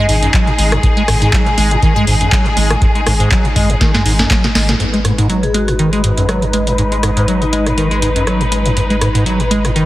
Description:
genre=acid house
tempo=121 BPM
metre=4/4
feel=swing 55% on 16ths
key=G# minor pentatonic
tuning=A4 = 442 Hz
part: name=vibraphone with medium hard mallets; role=melody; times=0.0-0.1, 5.4-7.8 s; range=D#4 to G#4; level=-24 LUFS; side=left 1 dB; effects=vintage 12-bit sampler grit, digital delay
part: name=rich studio string section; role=sustained chords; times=0.0-9.9 s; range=G#3 to B4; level=-19 LUFS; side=left 1 dB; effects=sidechain pumping, low-pass filter
part: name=liquid acid bass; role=riff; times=0.0-9.9 s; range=F#2 to G#3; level=-16 LUFS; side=equal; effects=phaser, sidechain pumping, digital delay
part: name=saturated sub bass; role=bass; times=0.1-9.9 s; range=G#1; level=-18 LUFS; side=equal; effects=sidechain pumping
part: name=booming analog drum machine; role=drums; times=0.1-9.9 s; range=handclaps, hi-hat, rim click, snare drum, toms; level=-18 LUFS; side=equal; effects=none
part: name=electronic kick drum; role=drums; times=0.3-4.4 s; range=none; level=-15 LUFS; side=equal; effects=none
room=light reverb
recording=heavily compressed radio sound, multiband compression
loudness=-11 LUFS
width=side -16 dB against mid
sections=0.0-4.8 A section; 4.8-9.9 B section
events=filter sweep on acid bass 0.0-4.8; drum fill 3.8-4.8; band accent 4.7; filter sweep on string section 4.8-9.9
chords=0.0 G#5; 4.8 G#m

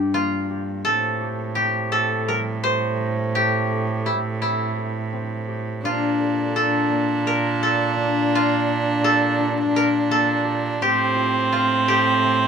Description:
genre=contemporary instrumental, chamber music in an uneven meter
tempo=168 BPM (eighths)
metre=7/8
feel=straight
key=unclear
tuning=A4 = 438 Hz
part: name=koto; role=melody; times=0.0-12.5 s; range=E4 to C5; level=-23 LUFS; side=equal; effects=none
part: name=concert harp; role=arpeggios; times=0.0-12.5 s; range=G3 to Bb4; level=-26 LUFS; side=left 5 dB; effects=none
part: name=rich cello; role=bass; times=0.0-12.5 s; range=G2 to Bb2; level=-26 LUFS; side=right 4 dB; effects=none
part: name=clear viola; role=second line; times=5.8-12.5 s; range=C4 to D4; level=-22 LUFS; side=right 4 dB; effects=none
room=moderate booth ambience, RT60 0.2 s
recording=none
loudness=-19 LUFS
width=side -6 dB against mid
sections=0.0-12.5 A section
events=none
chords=0.0 Gm; 0.8 Am7; 5.8 Bbmaj7; 10.8 F/A

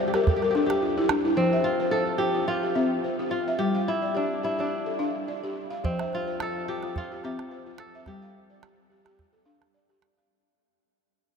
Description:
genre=west african traditional, West African string and xylophone music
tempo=108 BPM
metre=4/4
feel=swing 54% on 16ths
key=unclear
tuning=A4 = 440 Hz
part: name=kora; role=melody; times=0.0-9.7 s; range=C4 to A4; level=-28 LUFS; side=equal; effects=none
part: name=balafon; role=arpeggios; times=0.0-10.5 s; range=F3 to F5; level=-27 LUFS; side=left 1 dB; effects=none
part: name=calabash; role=percussion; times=0.1-1.2, 5.8-10.2 s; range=none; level=-30 LUFS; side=right 3 dB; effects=none
room=wet huge ambient reverb, RT60 8.1 s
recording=in a vast, echoing space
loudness=-24 LUFS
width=side -6 dB against mid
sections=0.0-1.4 A section; 1.4-10.3 A section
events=balafon fill 0.0-1.4; fade-out 1.4-10.3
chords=0.0 G5; 1.4 F5; 3.6 G5; 5.8 F5; 8.1 G5

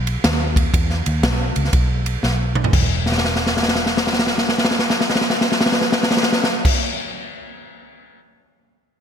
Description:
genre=uptempo gospel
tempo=120 BPM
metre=4/4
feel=swing 65% on 8ths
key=unclear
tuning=A4 = 438 Hz
part: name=vintage muted fingered electric bass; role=bass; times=0.0-6.7 s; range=E1 to E2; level=-22 LUFS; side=equal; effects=none
part: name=swinging big-band drum kit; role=drums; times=0.1-8.2 s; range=crash cymbal, kick drum, ride cymbal, snare drum, toms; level=-17 LUFS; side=equal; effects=none
room=light reverb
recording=bright 1980s-style digital production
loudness=-16 LUFS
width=side -8 dB against mid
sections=0.0-2.7 A section; 2.7-6.7 B section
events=drum fill 2.2-2.7, 3.0-6.6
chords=none

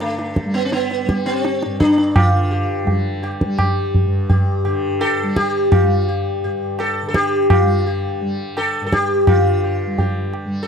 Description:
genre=indian classical, Hindustani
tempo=84 BPM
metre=5/4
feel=straight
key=G raga khamaj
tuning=A4 = 441 Hz
part: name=sitar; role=melody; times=0.0-10.7 s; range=A3 to A4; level=-19 LUFS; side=left 1 dB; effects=none
part: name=tanpura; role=drone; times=0.0-10.7 s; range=G2 to G3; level=-26 LUFS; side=equal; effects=stereo widening
part: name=tabla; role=percussion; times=0.0-10.6 s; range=none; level=-18 LUFS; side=right 1 dB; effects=none
room=light reverb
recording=dry, close 1970s-style studio recording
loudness=-16 LUFS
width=side -6 dB against mid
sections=0.0-9.3 A section; 9.3-10.7 B section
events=none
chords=none

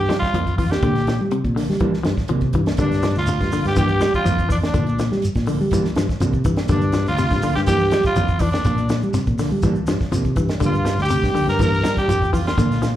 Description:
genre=afrobeat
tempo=123 BPM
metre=4/4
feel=straight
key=G dorian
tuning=A4 = 440 Hz
part: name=raspy tenor saxophone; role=melody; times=0.0-12.9 s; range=D4 to Bb4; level=-24 LUFS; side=left 1 dB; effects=slapback echo
part: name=bright trumpet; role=second line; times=0.0-12.9 s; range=D4 to Bb4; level=-28 LUFS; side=right 5 dB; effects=slapback echo
part: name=semi-hollow electric guitar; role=arpeggios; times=0.0-13.0 s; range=C3 to F3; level=-25 LUFS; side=left 5 dB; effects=slapback echo
part: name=fingered electric bass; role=bass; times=0.0-12.9 s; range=D2 to G3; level=-21 LUFS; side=equal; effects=none
part: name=mellow electric guitar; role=stabs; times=0.1-12.9 s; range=F3 to D4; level=-28 LUFS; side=right 6 dB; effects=spring reverb, slapback echo
part: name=compact cocktail drum kit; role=drums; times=0.1-12.9 s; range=hi-hat, kick drum, snare drum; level=-24 LUFS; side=equal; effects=none
part: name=shekere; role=percussion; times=2.8-13.0 s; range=none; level=-28 LUFS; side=equal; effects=none
room=light reverb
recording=live gig heard through the venue's PA, club reverb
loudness=-17 LUFS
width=side -12 dB against mid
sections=0.0-13.0 A section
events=none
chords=0.0 Gm7

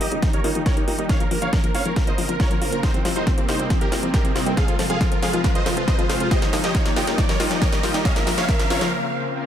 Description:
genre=uplifting trance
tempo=138 BPM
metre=4/4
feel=straight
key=unclear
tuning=A4 = 441 Hz
part: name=supersaw chords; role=melody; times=0.0-8.9 s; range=C4 to F5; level=-26 LUFS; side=right 1 dB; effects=sidechain pumping, low-pass filter, tape echo
part: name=wide unison pluck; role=arpeggios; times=0.0-8.9 s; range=F3 to F4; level=-28 LUFS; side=left 4 dB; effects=sidechain pumping, tape echo
part: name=solid FM bass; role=bass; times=0.0-8.9 s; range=Ab1 to F2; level=-30 LUFS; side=equal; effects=sidechain pumping, high-pass filter
part: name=house drum kit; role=drums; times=0.0-8.9 s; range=hi-hat, snare drum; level=-29 LUFS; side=equal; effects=overdrive, high-pass filter on snare, sidechain pumping on hats, high-pass filter on hats, high-pass filter on room
part: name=riser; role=sound effects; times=1.6-8.9 s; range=none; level=-32 LUFS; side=right 2 dB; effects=none
part: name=electronic kick drum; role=drums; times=0.2-8.6 s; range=none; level=-21 LUFS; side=equal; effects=overdrive
room=light reverb, digital ambience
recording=none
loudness=-18 LUFS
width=side -10 dB against mid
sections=0.0-9.5 A section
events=build-up 0.0-9.5; drum fill 0.0-8.9; filter sweep on synth arpeggio sound 0.0-9.5; riser 1.6-8.9; break 8.9-9.5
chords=0.0 Eb; 1.1 Bbmadd9; 2.8 Cm7; 4.6 Fm; 6.3 Eb; 8.1 Bbmadd9

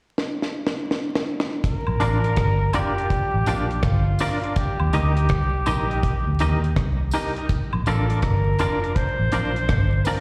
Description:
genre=roots reggae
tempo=82 BPM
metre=4/4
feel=swing 64% on 16ths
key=Bb major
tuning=A4 = 440 Hz
part: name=deep reggae drum kit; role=drums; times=0.2-10.2 s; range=hi-hat, kick drum, rim click, snare drum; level=-27 LUFS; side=equal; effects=slapback echo
part: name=warm flugelhorn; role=melody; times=1.6-10.2 s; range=F4 to C5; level=-30 LUFS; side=equal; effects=slapback echo, dub echo
part: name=vintage muted fingered electric bass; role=bass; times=1.9-10.0 s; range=F1 to Eb2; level=-24 LUFS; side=equal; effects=none
part: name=woodblock and tambourine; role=percussion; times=1.9-10.2 s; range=none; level=-37 LUFS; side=equal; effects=none
part: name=semi-hollow electric guitar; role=accompaniment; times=2.0-10.2 s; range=D4 to Eb5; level=-30 LUFS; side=equal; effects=tremolo, slapback echo, dub echo
room=light reverb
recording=live gig heard through the venue's PA, recital hall reverb, vinyl crackle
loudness=-22 LUFS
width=mono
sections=0.0-1.6 A section; 1.6-10.2 B section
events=drum fill 0.2-1.6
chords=0.0 N.C.; 1.6 Bb; 4.6 Eb; 7.5 Bb

